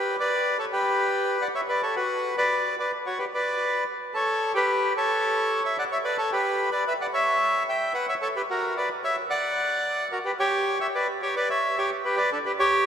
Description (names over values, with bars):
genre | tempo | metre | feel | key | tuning
tango | 110 BPM | 4/4 | rubato | unclear | A4 = 440 Hz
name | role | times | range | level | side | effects
bandoneon | solo | 0.0-12.9 s | D4 to G5 | -23 LUFS | equal | none
room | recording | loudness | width
wet cathedral reverb, RT60 5.0 s | recorded in a church or concert hall | -23 LUFS | side -8 dB against mid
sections
0.0-12.9 A section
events
none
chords
0.0 G; 2.0 Bm; 4.1 D5; 8.5 F#5; 10.7 G